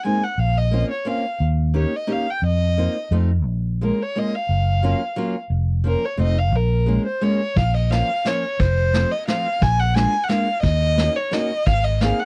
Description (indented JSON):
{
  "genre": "musette waltz",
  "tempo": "176 BPM",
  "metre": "3/4",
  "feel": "straight",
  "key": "Bb minor",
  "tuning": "A4 = 440 Hz",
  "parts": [
    { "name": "dark violin", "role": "melody", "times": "0.0-12.2 s", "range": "Bb4 to Ab5", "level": "-26 LUFS", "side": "equal", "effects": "none" },
    { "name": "fingerpicked steel-string acoustic guitar", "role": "accompaniment", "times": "0.0-12.2 s", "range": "F3 to Ab4", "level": "-26 LUFS", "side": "equal", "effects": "none" },
    { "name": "fingered electric bass", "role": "bass", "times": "0.4-12.1 s", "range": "F1 to F2", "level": "-21 LUFS", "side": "equal", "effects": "none" },
    { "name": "vintage brush drum kit", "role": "drums", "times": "7.6-12.1 s", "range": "kick drum, ride cymbal, snare drum", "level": "-26 LUFS", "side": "equal", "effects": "none" }
  ],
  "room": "light reverb",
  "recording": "dry, close 1970s-style studio recording",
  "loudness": "-21 LUFS",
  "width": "mono",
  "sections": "0.0-7.6 A section; 7.6-12.2 B section",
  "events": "none",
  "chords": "0.4 Bbmadd9; 1.4 Eb7; 2.4 F7sus4; 3.1 F7; 3.5 Bbm7; 4.5 Gbmaj7; 5.5 Bbm/F; 6.2 F7; 6.5 Bbm7; 7.6 Bbm; 8.6 F; 9.6 Bb7; 10.6 Ebm7; 11.7 Abadd9",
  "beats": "0.04 | 0.39 0.73 1.07 | 1.41 1.75 2.08 | 2.42 2.77 3.11 | 3.46 3.81 4.15 | 4.49 4.83 5.17 | 5.51 5.85 6.19 | 6.53 6.87 7.22 | 7.57 7.92 8.26 | 8.60 8.94 9.28 | 9.62 9.96 10.29 | 10.63 10.97 11.32 | 11.67 12.01"
}